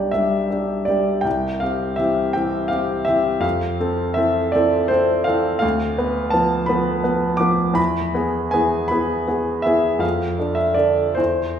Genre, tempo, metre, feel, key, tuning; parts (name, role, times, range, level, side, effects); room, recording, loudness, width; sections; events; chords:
classical, romantic nocturne for solo piano; 55 BPM (dotted quarters); 6/8; uneven beats, rubato; A4 = 440 Hz
clear grand piano; solo; 0.0-11.6 s; B1 to D6; -17 LUFS; equal
wet recital hall reverb, RT60 1.4 s; recorded in a church or concert hall; -17 LUFS; side -8 dB against mid
0.0-11.6 A section
0.0 G/B; 1.3 C; 3.4 Fmaj7; 5.6 Bdim/D; 7.8 E; 10.0 Dm/F